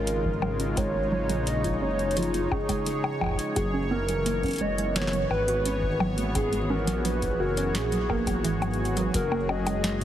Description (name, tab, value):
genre	IDM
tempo	86 BPM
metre	4/4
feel	straight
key	unclear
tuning	A4 = 439 Hz
part	warbly nostalgic lead	melody	0.0-10.0 s	F4 to Eb5	-30 LUFS	equal	lush chorus, cassette tape, digital delay
part	warm analog pad	sustained chords	0.0-10.0 s	Db3 to Bb4	-32 LUFS	left 1 dB	chorus, sidechain pumping
part	dark detuned saw bass	bass	0.0-10.0 s	Gb1 to Bb1	-30 LUFS	equal	tube saturation
part	bubbling stepped-filter texture	texture	0.0-10.0 s	Db5	-37 LUFS	right 2 dB	chorus, built-in reverb
part	booming analog drum machine	drums	0.1-10.0 s	bongos, congas, hi-hat, snare drum	-32 LUFS	left 1 dB	none
part	warbly dusty pluck	arpeggios	0.2-10.0 s	E3 to Gb4	-33 LUFS	right 2 dB	chorus, ping-pong delay
part	electronic kick drum	drums	0.2-10.0 s	none	-33 LUFS	equal	none
room	moderate huge ambient reverb, RT60 4.1 s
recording	heavily compressed radio sound, multiband compression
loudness	-24 LUFS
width	side -11 dB against mid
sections	0.0-9.1 A section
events	filter sweep on synth arpeggio sound 0.0-9.1; kick drops out 8.4-9.1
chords	0.0 Dbadd9; 3.6 E/Gb; 9.1 Gb